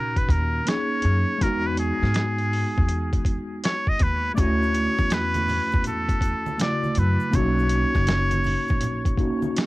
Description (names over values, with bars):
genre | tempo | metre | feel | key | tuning
hip hop, jazz-hop | 81 BPM | 4/4 | swing 64% on 16ths | B major | A4 = 442 Hz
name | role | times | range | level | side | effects
trumpet with straight mute | melody | 0.0-9.6 s | G#4 to D#5 | -26 LUFS | equal | cassette tape, tape echo
mellow tine electric piano | accompaniment | 0.0-9.7 s | A#2 to G#4 | -27 LUFS | equal | medium stereo tremolo, cassette tape
dusty soul sampler-style drum kit | drums | 0.2-9.7 s | hi-hat, kick drum, snare drum | -24 LUFS | equal | none
upright bass | bass | 0.3-9.3 s | F#1 to G#2 | -25 LUFS | equal | none
egg shaker and congas | percussion | 4.4-9.7 s | none | -35 LUFS | right 4 dB | none
room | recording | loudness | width
light reverb | home recording on cassette | -20 LUFS | side -19 dB against mid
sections
0.0-9.7 A section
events
none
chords
0.0 Bmaj9 (rootless); 1.4 Emaj9; 4.4 Dmaj9; 7.3 Bmaj9